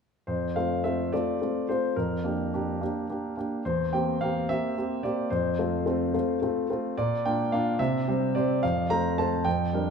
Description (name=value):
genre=classical-period piano sonatina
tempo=72 BPM (dotted quarters)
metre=6/8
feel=straight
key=F major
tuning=A4 = 440 Hz
part: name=clear concert grand piano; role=solo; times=0.3-9.9 s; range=E2 to Bb5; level=-25 LUFS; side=equal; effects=none
room=moderate recital hall reverb, RT60 1.8 s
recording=minimal, uncompressed stereo recording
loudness=-25 LUFS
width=side -6 dB against mid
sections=0.3-9.9 A section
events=none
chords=0.3 F; 2.0 Gm7/F; 3.6 C7/E; 5.3 F; 7.0 Bb; 7.8 C; 8.6 F